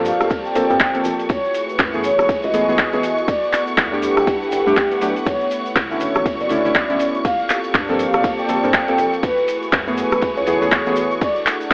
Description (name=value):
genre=deep house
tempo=121 BPM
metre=4/4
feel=swing 59% on 16ths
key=unclear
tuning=A4 = 444 Hz
part: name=warm analog pad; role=sustained chords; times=0.0-11.7 s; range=A3 to C#6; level=-27 LUFS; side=equal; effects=chorus, sidechain pumping
part: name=deep mellow chord stab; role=stabs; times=0.0-11.2 s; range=D3 to A4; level=-22 LUFS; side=equal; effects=chorus, sidechain pumping, analog delay
part: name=rubbery square bass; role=bass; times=0.0-11.7 s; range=D1 to G2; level=-30 LUFS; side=equal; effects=tube saturation, sidechain pumping
part: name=cloth-damped thuddy drum kit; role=drums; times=0.0-11.7 s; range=hi-hat, snare drum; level=-34 LUFS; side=equal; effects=none
part: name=string machine, violins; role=texture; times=0.0-11.7 s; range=C#6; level=-31 LUFS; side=equal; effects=ensemble chorus
part: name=warm studio string section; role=texture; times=0.0-11.7 s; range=B3 to C#6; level=-27 LUFS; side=equal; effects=sidechain pumping
part: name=mellow horn-like synth lead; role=melody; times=0.1-11.6 s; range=G4 to G5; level=-20 LUFS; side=equal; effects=lush chorus, analog delay
part: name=deep house drum kit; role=drums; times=0.1-11.7 s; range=handclaps, hi-hat, ride cymbal, rim click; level=-22 LUFS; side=equal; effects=none
part: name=tube shaker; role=percussion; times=0.1-11.7 s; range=none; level=-43 LUFS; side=equal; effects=none
part: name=electronic kick drum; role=drums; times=0.3-11.7 s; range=none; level=-22 LUFS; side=equal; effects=none
room=moderate echo chamber reverb, RT60 1.9 s, small room ambience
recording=AM radio sound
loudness=-15 LUFS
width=side -31 dB against mid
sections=0.0-11.7 A section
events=none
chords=0.0 Gm11; 1.3 F#m11; 3.3 Em11; 5.3 Bm11; 7.2 Gm11; 9.2 F#m11; 11.2 E9sus4